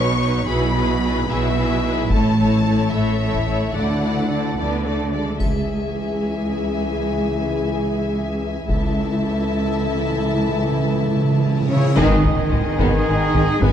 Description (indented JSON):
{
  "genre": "cinematic, epic orchestral film score",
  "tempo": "73 BPM (dotted quarters)",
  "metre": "6/8",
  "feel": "straight",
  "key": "C# minor",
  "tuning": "A4 = 438 Hz",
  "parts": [
    { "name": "bright symphonic violin section", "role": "melody", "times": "0.0-13.7 s", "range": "C#5 to C#6", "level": "-29 LUFS", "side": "left 5 dB", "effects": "none" },
    { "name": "warm symphonic violin section", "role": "second line", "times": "0.0-13.7 s", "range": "G#3 to E5", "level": "-28 LUFS", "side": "left 3 dB", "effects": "none" },
    { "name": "warm symphonic viola section", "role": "accompaniment", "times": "0.0-13.7 s", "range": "F#3 to G#4", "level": "-27 LUFS", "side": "equal", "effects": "none" },
    { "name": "rich symphonic cello section", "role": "bass", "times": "0.0-13.7 s", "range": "C#2 to G#3", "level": "-23 LUFS", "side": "right 1 dB", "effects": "none" },
    { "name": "rich symphonic double bass section", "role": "bass", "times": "0.0-5.9, 8.7-9.2, 12.0-13.7 s", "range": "G#1 to D2", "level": "-24 LUFS", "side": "right 3 dB", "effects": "none" },
    { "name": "taiko ensemble", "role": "drums", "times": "2.1-13.7 s", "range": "none", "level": "-22 LUFS", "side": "left 1 dB", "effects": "none" },
    { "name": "warm French horn section", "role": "sustained chords", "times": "5.4-13.7 s", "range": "C#3 to A4", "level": "-25 LUFS", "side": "left 4 dB", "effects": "none" },
    { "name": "timpani", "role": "percussion", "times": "5.4-6.2, 8.7-12.8 s", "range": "G#2 to C#3", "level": "-24 LUFS", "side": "right 2 dB", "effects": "none" },
    { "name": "triangle", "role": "percussion", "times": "5.4-6.5 s", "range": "none", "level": "-47 LUFS", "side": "left 4 dB", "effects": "none" },
    { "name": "reverse cymbal and impact", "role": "sound effects", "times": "11.6-13.6 s", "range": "none", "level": "-34 LUFS", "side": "equal", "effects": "none" },
    { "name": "clear trumpet section", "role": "stabs", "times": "11.7-13.7 s", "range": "E4 to B4", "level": "-24 LUFS", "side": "right 3 dB", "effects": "none" },
    { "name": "mellow tuba", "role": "bass", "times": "12.0-13.7 s", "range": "G#1", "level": "-25 LUFS", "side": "right 4 dB", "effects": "none" }
  ],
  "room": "moderate concert hall reverb, RT60 2.4 s",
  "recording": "dark, warm production",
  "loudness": "-17 LUFS",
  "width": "side -9 dB against mid",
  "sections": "0.0-5.4 A section; 5.4-12.0 B section; 12.0-13.7 C section",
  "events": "timpani fill 8.7-12.0; reverse cymbal 11.6-12.0; band accent 12.0-12.5; impact 12.0-13.6",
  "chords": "0.5 Eadd9/B; 2.1 A; 3.8 Dadd9; 5.4 C#m; 8.7 A/C#; 12.0 G#m"
}